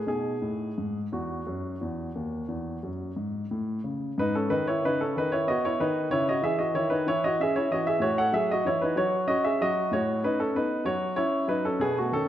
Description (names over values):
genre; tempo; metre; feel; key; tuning
classical, baroque-style suite movement for grand piano; 56-65 BPM (dotted quarters); 12/8; rubato; unclear; A4 = 440 Hz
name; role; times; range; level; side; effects
warm baby grand piano; solo; 0.0-12.3 s; D#2 to F#5; -25 LUFS; equal; none
room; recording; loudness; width
wet scoring stage reverb, RT60 2.0 s; none; -25 LUFS; side -11 dB against mid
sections
0.0-4.2 A section; 4.2-12.3 B section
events
none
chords
0.1 B (rootless); 4.2 G#m; 6.1 C#m; 8.0 F#m/A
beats
| 0.07 1.12 2.15 3.17 | 4.18 5.16 6.11 7.07 | 8.02 8.97 9.93 10.86 | 11.81